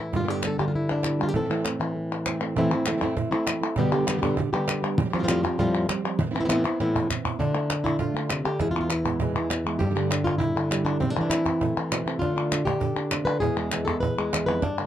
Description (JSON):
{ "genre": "flamenco", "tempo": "199 BPM", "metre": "4/4", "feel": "straight", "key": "A minor", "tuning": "A4 = 440 Hz", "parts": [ { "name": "flamenco guitar", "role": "melody", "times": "0.0-14.9 s", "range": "E2 to B4", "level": "-25 LUFS", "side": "left 1 dB", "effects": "none" }, { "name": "flamenco guitar", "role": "stabs", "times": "0.1-14.9 s", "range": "E2 to G4", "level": "-30 LUFS", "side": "right 5 dB", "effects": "none" }, { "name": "cajon", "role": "percussion", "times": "0.1-14.8 s", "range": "none", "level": "-30 LUFS", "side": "right 3 dB", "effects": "none" }, { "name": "palmas hand claps", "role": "percussion", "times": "0.3-14.9 s", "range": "none", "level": "-30 LUFS", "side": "left 4 dB", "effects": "none" } ], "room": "moderate booth ambience, RT60 0.2 s", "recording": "dark, warm production", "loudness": "-23 LUFS", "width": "side -11 dB against mid", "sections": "0.0-2.6 A section; 2.6-7.4 B section; 7.4-14.9 C section", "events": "drum fill 6.6-7.4", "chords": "0.1 Gadd9; 1.4 Am; 3.8 G; 5.0 Fadd9; 6.2 Amadd9; 7.4 Dm; 8.6 E; 9.8 Gsus2; 11.0 C6; 12.2 Dm; 13.4 E" }